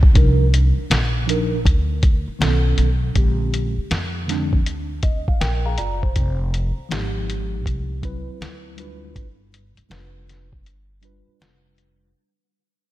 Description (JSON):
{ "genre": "hip hop, jazz-hop", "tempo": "80 BPM", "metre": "4/4", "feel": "swing 66% on 16ths", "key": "C minor", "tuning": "A4 = 441 Hz", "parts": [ { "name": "upright bass", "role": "bass", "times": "0.0-12.1 s", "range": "F1 to F2", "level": "-21 LUFS", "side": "equal", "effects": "none" }, { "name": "lo-fi sampler-style drum kit", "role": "drums", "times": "0.0-12.0 s", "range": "hi-hat, kick drum, snare drum", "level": "-19 LUFS", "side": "equal", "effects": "none" }, { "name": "mellow tine electric piano", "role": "accompaniment", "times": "0.1-12.1 s", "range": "D3 to Bb5", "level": "-27 LUFS", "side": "right 1 dB", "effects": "medium stereo tremolo" } ], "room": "little or no reverb", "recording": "none", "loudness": "-18 LUFS", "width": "side -15 dB against mid", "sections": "0.2-12.2 A section", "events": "fade-out 0.2-12.2; tine electric piano fill 4.7-6.2; break 10.7-12.2", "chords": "0.2 Cm11; 2.4 B9; 3.2 Bb13; 6.2 Fm9; 8.4 D13; 9.2 G7", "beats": "| 0.15 0.91 1.66 2.40 | 3.15 3.90 4.66 5.41 | 6.16 6.91 7.66 8.40 | 9.15 9.90 10.65 11.40" }